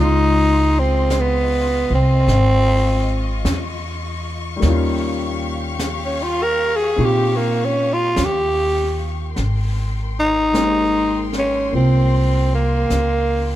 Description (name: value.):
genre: jazz ballad.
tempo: 51 BPM.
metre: 4/4.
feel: swing 68% on 8ths.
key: Ab major.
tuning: A4 = 440 Hz.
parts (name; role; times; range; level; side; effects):
growling tenor saxophone; melody; 0.0-13.6 s; Bb3 to Bb4; -18 LUFS; equal; none.
warm baby grand piano; accompaniment; 0.0-13.6 s; G3 to C5; -26 LUFS; left 3 dB; none.
warm symphonic string section; sustained chords; 0.0-13.6 s; F4 to Db6; -30 LUFS; left 4 dB; none.
upright bass; bass; 0.0-13.6 s; Ab1 to Bb2; -20 LUFS; equal; none.
jazz brush drum kit; drums; 1.1-13.6 s; brushed snare drum, hi-hat, snare drum; -30 LUFS; equal; none.
room: light reverb.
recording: dark, warm production.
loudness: -16 LUFS.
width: side -13 dB against mid.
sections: 0.0-9.4 A section; 9.4-13.6 B section.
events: tenor saxophone solo 0.0-9.4.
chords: 0.0 Dbmaj9; 4.6 Eb9; 9.4 Abmaj9.